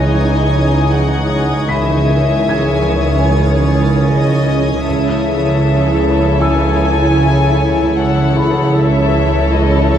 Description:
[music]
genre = cinematic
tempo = 76 BPM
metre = 4/4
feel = straight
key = C# minor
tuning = A4 = 441 Hz
[part]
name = warm chamber violin section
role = melody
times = 0.0-10.0 s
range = C#5 to G#5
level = -21 LUFS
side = left 6 dB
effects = none
[part]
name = warm chamber violin section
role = second line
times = 0.0-10.0 s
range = G#4 to C#5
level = -21 LUFS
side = left 2 dB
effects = none
[part]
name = dark symphonic viola section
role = accompaniment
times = 0.0-10.0 s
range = D#3 to E4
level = -19 LUFS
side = equal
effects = none
[part]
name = shimmering ambient pad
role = sustained chords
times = 0.0-10.0 s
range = C#4 to D#6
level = -22 LUFS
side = right 1 dB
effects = chorus, built-in reverb, phaser
[part]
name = rich symphonic cello section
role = bass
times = 0.0-10.0 s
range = C#3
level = -18 LUFS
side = right 2 dB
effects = none
[part]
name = warm symphonic double bass section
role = bass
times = 0.0-10.0 s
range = C#2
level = -16 LUFS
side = right 2 dB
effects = none
[part]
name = dark concert grand piano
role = texture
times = 0.0-10.0 s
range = F#5 to B6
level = -28 LUFS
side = left 3 dB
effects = none
[part]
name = warm symphonic violin section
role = texture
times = 0.0-4.4 s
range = C#6 to G#6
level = -29 LUFS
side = left 2 dB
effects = none
[sound]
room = wet recital hall reverb, RT60 1.3 s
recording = dark, warm production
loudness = -11 LUFS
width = side -9 dB against mid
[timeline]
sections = 0.0-10.0 A section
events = none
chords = 0.0 C#madd9; 4.8 A/C#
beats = 0.12 0.91 | 1.70 2.48 3.27 4.06 | 4.85 5.63 6.41 7.19 | 7.97 8.75 9.53

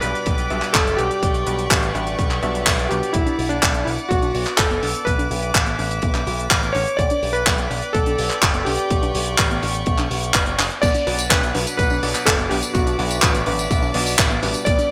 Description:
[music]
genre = italo disco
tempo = 125 BPM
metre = 4/4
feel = straight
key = B minor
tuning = A4 = 435 Hz
[part]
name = warm electric grand piano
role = melody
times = 0.0-14.9 s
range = D4 to D5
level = -26 LUFS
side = equal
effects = digital delay
[part]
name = rich chamber string section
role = sustained chords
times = 0.0-14.9 s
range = B4 to D6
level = -30 LUFS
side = equal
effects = none
[part]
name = clear electric grand piano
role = stabs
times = 0.0-3.4, 11.1-14.9 s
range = B2 to E5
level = -30 LUFS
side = equal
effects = digital delay
[part]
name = picked electric bass with an envelope filter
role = bass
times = 0.0-14.8 s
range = F#1 to B1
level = -28 LUFS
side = equal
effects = none
[part]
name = damped 70s drum kit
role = drums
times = 0.0-14.9 s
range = crash cymbal, handclaps, hi-hat, tambourine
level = -24 LUFS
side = equal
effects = studio reverb, gated reverb
[part]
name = electronic kick drum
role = drums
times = 0.3-14.8 s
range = none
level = -24 LUFS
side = equal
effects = studio reverb
[part]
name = warbly dusty pluck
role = arpeggios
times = 3.1-14.9 s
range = B3 to B4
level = -33 LUFS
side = equal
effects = chorus, digital delay
[sound]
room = moderate plate reverb, RT60 1.3 s, studio reverb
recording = bright 1980s-style digital production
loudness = -19 LUFS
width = mono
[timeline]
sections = 0.0-10.8 A section; 10.8-14.9 B section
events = drum fill 10.6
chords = 0.0 G; 3.1 Bm; 7.0 G; 10.8 Bm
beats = 0.27 0.75 | 1.23 1.71 2.19 2.67 | 3.15 3.63 4.11 4.59 | 5.07 5.55 6.03 6.51 | 6.99 7.47 7.95 8.43 | 8.91 9.39 9.87 10.35 | 10.83 11.31 11.79 12.27 | 12.75 13.23 13.71 14.19 | 14.67

